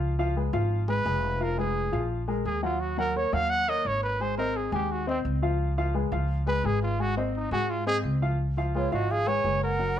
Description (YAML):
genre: jazz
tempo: 172 BPM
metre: 4/4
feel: straight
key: Db mixolydian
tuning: A4 = 435 Hz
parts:
  - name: warm baby grand piano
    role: accompaniment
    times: 0.0-10.0 s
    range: F3 to Ab5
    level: -30 LUFS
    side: left 3 dB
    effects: none
  - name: upright bass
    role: bass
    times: 0.0-10.0 s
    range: F1 to Ab2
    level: -29 LUFS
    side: equal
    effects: none
  - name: clear trumpet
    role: melody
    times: 0.9-10.0 s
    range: Bb3 to Gb5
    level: -28 LUFS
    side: right 1 dB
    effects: none
  - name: mellow hollow concert flute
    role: second line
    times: 8.8-10.0 s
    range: Db5 to Ab5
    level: -32 LUFS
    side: right 5 dB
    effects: none
room: light reverb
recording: none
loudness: -25 LUFS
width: side -10 dB against mid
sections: 0.0-8.4 A section; 8.4-10.0 B section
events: trumpet solo 0.0-8.4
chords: 0.0 Db7; 1.4 Fdim; 2.1 Bb5; 2.8 Ebm7; 4.2 Ab; 5.6 Db7; 7.0 Ab; 8.4 Db7